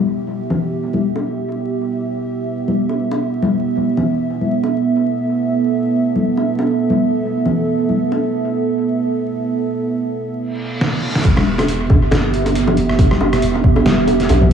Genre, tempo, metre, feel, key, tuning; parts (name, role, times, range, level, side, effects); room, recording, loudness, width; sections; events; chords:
deep dubstep; 138 BPM; 4/4; swing 57% on 16ths, half-time; E minor; A4 = 438 Hz
dark analog pad; sustained chords; 0.0-14.5 s; B3 to E5; -18 LUFS; right 4 dB; chorus
congas and bongos; percussion; 0.5-8.2, 11.4-14.5 s; -20 LUFS; left 3 dB; dub echo
reverse cymbal; sound effects; 10.5-11.2 s; -28 LUFS; equal
trip hop sampler-style drum kit; drums; 10.8-14.4 s; crash cymbal, hi-hat, rim click, snare drum; -20 LUFS; right 1 dB; low-pass filter on hats, low-pass filter on snare, low-pass filter on toms, low-pass filter on cymbals, low-pass filter on room, tape echo
soft dub sub bass; bass; 11.2-14.5 s; E1 to B1; -20 LUFS; equal
electronic kick drum; drums; 11.2-14.5 s; -13 LUFS; equal; overdrive
moderate echo chamber reverb, RT60 2.2 s; echo-heavy mix, vinyl crackle, small room reverb; -15 LUFS; side -7 dB against mid
0.0-11.2 A section; 11.2-14.5 B section
break 9.5-11.2; reverse cymbal 10.5-11.2; drum fill 10.8-11.2; drop 11.2-14.5
0.0 Em; 4.3 Asus2; 11.2 Em